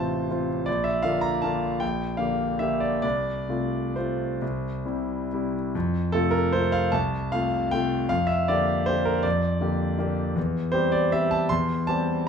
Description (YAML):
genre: classical, piano waltz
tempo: 124-172 BPM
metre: 3/4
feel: rubato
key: F major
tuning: A4 = 439 Hz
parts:
  - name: clear concert grand piano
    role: solo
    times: 0.0-12.3 s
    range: A1 to C6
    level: -23 LUFS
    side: equal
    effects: none
room: wet large studio reverb, RT60 0.8 s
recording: heard from further back in the room, nothing above 10.5 kHz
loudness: -23 LUFS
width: side -6 dB against mid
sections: 0.0-5.7 A section; 5.7-12.3 B section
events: none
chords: 0.0 F/A; 0.7 Bb; 1.8 Gm/Bb; 3.0 F/C; 4.4 C; 5.7 F; 8.1 Gm7/F; 10.4 C/E